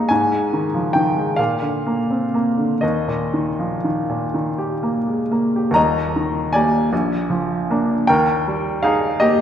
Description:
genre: classical, romantic nocturne for solo piano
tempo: 39-54 BPM (dotted quarters)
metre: 12/8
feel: rubato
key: Eb major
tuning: A4 = 439 Hz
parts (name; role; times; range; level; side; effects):
- bright upright piano; solo; 0.0-9.4 s; Eb1 to Bb5; -17 LUFS; equal; none
room: wet concert hall reverb, RT60 1.9 s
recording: heard from further back in the room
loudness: -17 LUFS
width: side -9 dB against mid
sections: 0.0-5.8 A section; 5.8-9.4 B section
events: none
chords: 0.1 Fm7/Ab; 1.4 Bb; 2.8 Eb; 6.9 Bb7; 8.1 Eb

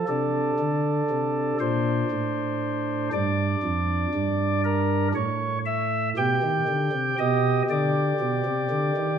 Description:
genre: classical, chorale-style piece for pipe organ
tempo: 59 BPM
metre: 3/4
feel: straight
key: unclear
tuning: A4 = 442 Hz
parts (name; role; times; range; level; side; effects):
- pipe organ, flutes; solo; 0.0-9.2 s; F2 to G5; -22 LUFS; right 1 dB; none
room: wet recital hall reverb, RT60 1.4 s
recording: none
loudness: -22 LUFS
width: side -8 dB against mid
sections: 0.0-9.2 A section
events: none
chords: 0.1 D5/C; 3.1 G5; 5.2 N.C.; 6.2 G/B

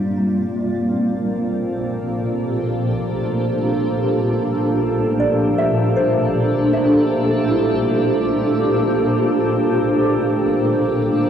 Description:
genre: ambient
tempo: free time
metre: none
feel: none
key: Bb lydian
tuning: A4 = 440 Hz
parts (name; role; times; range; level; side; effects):
- granular cloud pad; sustained chords; 0.0-11.3 s; Bb2 to D5; -18 LUFS; equal; built-in reverb, cassette tape
- soft synth bell; arpeggios; 0.0-11.3 s; D4 to E5; -24 LUFS; equal; chorus, phaser, cassette tape, analog delay
- organ-like drone; drone; 0.9-11.3 s; F3 to Bb3; -24 LUFS; equal; ensemble chorus, built-in reverb, cassette tape
room: wet small room ambience, RT60 0.5 s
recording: home recording on cassette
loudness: -16 LUFS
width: side -8 dB against mid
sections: 0.0-11.3 A section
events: none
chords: 0.0 Bb69; 0.6 Bbmaj7

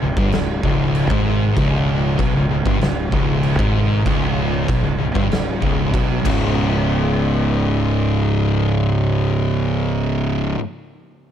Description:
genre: stoner and doom metal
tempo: 96 BPM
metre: 4/4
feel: straight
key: unclear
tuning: A4 = 441 Hz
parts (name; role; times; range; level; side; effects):
- thick fuzz guitar; riff; 0.0-10.6 s; C#2 to C#3; -21 LUFS; left 6 dB; distortion
- thick fuzz guitar; riff; 0.0-10.6 s; C#2 to C#3; -21 LUFS; right 7 dB; distortion
- fuzz fingered electric bass; bass; 0.0-10.5 s; C#1 to B1; -24 LUFS; equal; overdrive
- oversized low-tuned drum kit; drums; 0.2-6.4 s; crash cymbal, kick drum, snare drum; -22 LUFS; equal; none
room: light reverb, studio reverb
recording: none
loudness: -16 LUFS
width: side -9 dB against mid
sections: 0.0-6.6 A section; 6.6-9.1 B section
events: drum fill 6.2-6.6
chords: 0.0 C#5

